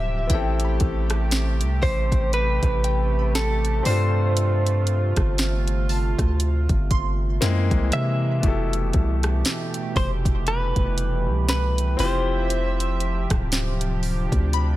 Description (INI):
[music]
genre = contemporary R&B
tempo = 59 BPM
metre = 4/4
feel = swing 58% on 16ths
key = D dorian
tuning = A4 = 440 Hz
[part]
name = direct-recorded clean electric guitar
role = melody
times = 0.0-14.0 s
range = A4 to E5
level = -28 LUFS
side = equal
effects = tape echo
[part]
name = clear concert grand piano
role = accompaniment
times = 0.0-14.8 s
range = B2 to A4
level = -31 LUFS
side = left 6 dB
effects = none
[part]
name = chorused pulse-width pad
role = sustained chords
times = 0.0-14.8 s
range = B2 to E5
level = -30 LUFS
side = right 4 dB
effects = none
[part]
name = long sustained 808-style bass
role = bass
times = 0.0-14.8 s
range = D1 to C3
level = -22 LUFS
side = equal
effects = none
[part]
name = glassy wavetable pluck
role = texture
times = 0.0-7.9, 14.5-14.8 s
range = G5 to D6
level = -34 LUFS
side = left 2 dB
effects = chorus, tape echo
[part]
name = smooth R&B drum kit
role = drums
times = 0.3-14.8 s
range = hi-hat, kick drum, rim click, snare drum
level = -24 LUFS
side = equal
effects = none
[sound]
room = digital ambience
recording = none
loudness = -20 LUFS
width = side -16 dB against mid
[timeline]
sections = 0.0-14.8 A section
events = none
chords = 0.3 Am7; 3.9 G9sus4; 7.4 Caug7; 8.4 Fmaj9#11; 12.0 Dm11